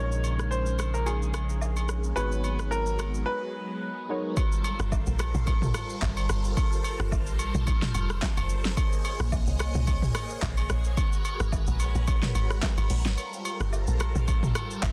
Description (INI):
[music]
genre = amapiano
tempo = 109 BPM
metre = 4/4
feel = swing 55% on 16ths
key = unclear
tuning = A4 = 439 Hz
[part]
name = clear baby grand piano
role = melody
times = 0.0-4.0 s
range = Ab4 to Db5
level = -36 LUFS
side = equal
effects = low-pass filter, tape echo
[part]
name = warm analog keys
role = accompaniment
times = 0.0-4.4 s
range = Bb2 to Db5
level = -38 LUFS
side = equal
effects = chorus
[part]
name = phased string machine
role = sustained chords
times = 0.0-14.9 s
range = Db3 to Eb5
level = -40 LUFS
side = equal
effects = ensemble chorus, phaser, sidechain pumping, low-pass filter
[part]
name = round analog bass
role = bass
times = 0.0-3.2 s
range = Ab1 to Bb1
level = -31 LUFS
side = equal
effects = none
[part]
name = deep house drum kit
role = drums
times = 0.1-14.9 s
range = handclaps, hi-hat, kick drum, rim click, shaker, snare drum, toms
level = -31 LUFS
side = equal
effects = vintage 12-bit sampler grit, soft clipping on snare
[part]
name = agogo bells and woodblock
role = percussion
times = 0.2-14.9 s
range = none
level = -39 LUFS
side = equal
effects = none
[part]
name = deep log drum bass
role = bass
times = 4.8-14.9 s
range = F1 to C2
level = -30 LUFS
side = equal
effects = none
[sound]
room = digital ambience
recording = dense, heavily limited modern master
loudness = -28 LUFS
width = mono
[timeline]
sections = 0.0-4.4 A section; 4.4-14.9 B section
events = break 3.3-4.4; drop 4.4-14.9; kick muted 13.2-14.3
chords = 0.0 Bbm7; 2.2 Abm11; 4.4 Gm11; 8.8 Bbm11; 11.0 Abm11; 13.2 Gm11